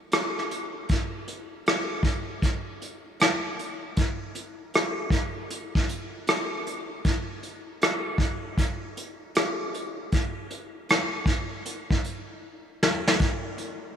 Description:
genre	hip hop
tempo	78 BPM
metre	4/4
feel	swing 65% on 16ths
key	none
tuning	none
part	vintage brush drum kit	drums	0.1-13.8 s	hi-hat, kick drum, rim click, snare drum	-25 LUFS	equal	none
room	wet plate reverb, RT60 3.4 s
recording	none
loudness	-25 LUFS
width	side -8 dB against mid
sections	0.9-14.0 A section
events	break 0.0-0.9; drum fill 12.4-13.2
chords	none

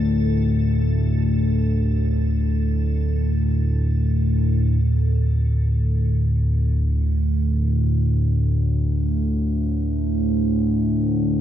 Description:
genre	dark ambient drone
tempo	free time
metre	none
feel	none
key	unclear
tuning	A4 = 440 Hz
part	analog drone	drone	0.0-11.4 s	D2 to A2	-18 LUFS	equal	chorus
part	icy glass pad	texture	0.0-4.8 s	A4	-38 LUFS	right 3 dB	chorus, built-in reverb
room	moderate huge ambient reverb, RT60 8.4 s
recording	dark, warm production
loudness	-18 LUFS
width	side -11 dB against mid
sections	0.0-4.8 A section; 4.8-11.4 B section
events	fade-out on ambient pad 0.0-4.8; filter sweep on synth drone 0.0-4.8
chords	0.0 D5

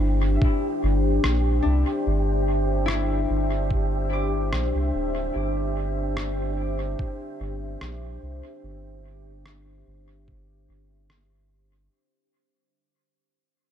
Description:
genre	ambient dub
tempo	73 BPM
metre	4/4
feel	swing 53% on 16ths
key	unclear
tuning	A4 = 444 Hz
part	deep dark ambient pad	sustained chords	0.0-11.9 s	D4 to E5	-28 LUFS	left 2 dB	chorus, built-in reverb
part	concert harp	arpeggios	0.0-5.5 s	D4 to D6	-35 LUFS	left 7 dB	dub echo
part	soft dub sub bass	bass	0.0-11.9 s	D1 to C2	-25 LUFS	equal	none
part	wind-like tuned noise texture	texture	0.0-11.9 s	G4	-36 LUFS	right 4 dB	built-in reverb
part	electronic kick drum	drums	0.4-10.5 s	none	-24 LUFS	equal	none
part	electronic rim click	drums	1.2-11.3 s	none	-32 LUFS	equal	dub echo
room	light reverb, digital ambience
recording	nothing above 10.8 kHz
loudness	-22 LUFS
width	side -9 dB against mid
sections	0.0-11.9 A section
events	fade-out 0.0-11.9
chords	0.0 G5

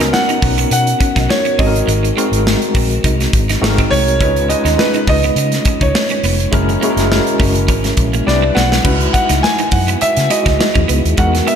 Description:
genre	polished 1980s jazz-funk pop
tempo	103 BPM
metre	4/4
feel	swing 54% on 16ths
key	unclear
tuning	A4 = 441 Hz
part	overdriven tine electric piano	accompaniment	0.0-11.6 s	G3 to B4	-18 LUFS	left 1 dB	fast tremolo, wide subtle chorus, slapback echo
part	electric guitar at the edge of break-up	riff	0.0-11.6 s	G#3 to D#4	-23 LUFS	right 6 dB	ensemble chorus, slapback echo
part	vintage muted fingered electric bass	bass	0.0-11.4 s	E#1 to C#3	-17 LUFS	equal	none
part	modern studio drum kit	drums	0.0-11.6 s	crash cymbal, hi-hat, kick drum, snare drum	-17 LUFS	equal	none
part	clear concert grand piano	melody	0.1-11.6 s	B4 to G#5	-18 LUFS	right 1 dB	slapback echo
room	moderate lush hall reverb, RT60 2.4 s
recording	big arena sound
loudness	-11 LUFS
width	side -8 dB against mid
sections	0.0-8.9 A section; 8.9-11.6 B section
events	drum fill 8.3-8.9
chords	0.0 Bmaj9; 1.6 G#7; 4.2 C#7; 6.5 F#7; 8.3 Cmaj9; 8.9 C#m11

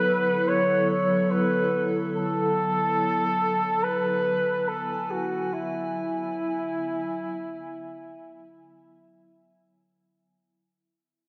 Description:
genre	ambient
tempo	free time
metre	none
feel	none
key	E mixolydian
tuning	A4 = 440 Hz
part	mellow flugelhorn	melody	0.0-9.8 s	E4 to C#5	-28 LUFS	equal	shimmer reverb, diffuse ambient delay
part	warbly tape-like pad	sustained chords	0.0-10.7 s	D3 to G#5	-30 LUFS	equal	chorus, built-in reverb, phaser, tremolo, shimmer reverb
room	wet concert hall reverb, RT60 2.0 s, small room ambience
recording	none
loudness	-26 LUFS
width	mono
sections	0.0-10.6 A section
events	fade-out 1.6-10.6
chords	0.0 E7sus4

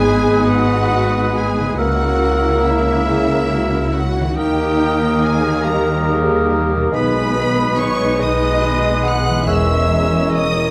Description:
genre	classical, slow romantic movement for symphony orchestra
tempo	47 BPM (dotted quarters)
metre	6/8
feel	rubato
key	G# minor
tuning	A4 = 440 Hz
part	clear studio violin section	melody	0.0-10.7 s	E5 to F#6	-28 LUFS	equal	none
part	clear oboe	second line	0.0-10.5 s	A#4 to C#5	-28 LUFS	equal	none
part	hollow concert flute	second line	0.0-10.5 s	D#6 to E6	-27 LUFS	equal	none
part	warm studio violin section	second line	0.0-10.7 s	E4 to F#5	-27 LUFS	equal	none
part	warm bassoon	accompaniment	0.0-10.5 s	G#3 to A#3	-26 LUFS	equal	none
part	warm studio viola section	accompaniment	0.0-10.7 s	C#3 to G4	-25 LUFS	equal	none
part	dark French horn section	sustained chords	0.0-10.7 s	D#4 to B4	-25 LUFS	equal	none
part	concert harp	arpeggios	0.0-10.7 s	G#2 to A#4	-30 LUFS	equal	none
part	clear studio double bass section	bass	0.0-10.5 s	E1 to D#2	-24 LUFS	equal	none
part	dark studio cello section	bass	0.0-10.5 s	E2 to D#3	-26 LUFS	equal	none
room	moderate scoring stage reverb, RT60 1.8 s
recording	dark, warm production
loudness	-16 LUFS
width	mono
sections	0.0-10.7 A section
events	none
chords	0.0 G#m; 1.8 A#dim/C#; 4.4 D#; 6.9 G#m/B; 9.5 C#m/E

